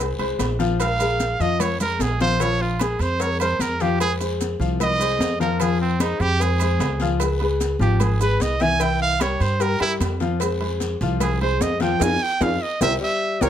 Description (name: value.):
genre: Afro-Cuban jazz.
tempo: 150 BPM.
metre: 4/4.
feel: straight.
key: F minor.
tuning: A4 = 438 Hz.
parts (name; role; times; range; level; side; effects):
warm upright piano; accompaniment; 0.0-13.5 s; E3 to F5; -24 LUFS; left 4 dB; none.
upright bass; bass; 0.0-13.5 s; Ab1 to G2; -24 LUFS; right 1 dB; none.
agogo bells and timbales; percussion; 0.0-13.5 s; none; -31 LUFS; right 8 dB; none.
congas; percussion; 0.0-13.5 s; none; -28 LUFS; left 2 dB; none.
guiro; percussion; 0.0-13.5 s; none; -39 LUFS; left 2 dB; none.
maracas; percussion; 0.0-13.5 s; none; -34 LUFS; right 12 dB; none.
cowbell; percussion; 0.4-13.5 s; none; -32 LUFS; left 9 dB; none.
clear trumpet; melody; 0.8-13.5 s; C4 to Ab5; -23 LUFS; right 3 dB; none.
breathy tenor saxophone; second line; 13.0-13.5 s; F3 to G3; -27 LUFS; left 5 dB; none.
room: light reverb.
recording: close, detailed microphones.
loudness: -19 LUFS.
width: side -10 dB against mid.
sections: 0.0-13.5 A section.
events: trumpet solo 0.0-13.5; band accent 12.0-13.5; drum fill 13.2.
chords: 0.0 Fm; 0.8 Bb5; 4.0 Fm7; 7.2 Db7; 8.8 C7; 10.4 Fm; 12.8 C7.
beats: 0.40 | 0.80 1.20 1.60 2.00 | 2.40 2.80 3.20 3.60 | 4.00 4.41 4.81 5.21 | 5.61 6.01 6.41 6.81 | 7.21 7.61 8.01 8.41 | 8.81 9.21 9.61 10.01 | 10.41 10.81 11.21 11.61 | 12.01 12.41 12.82 13.22.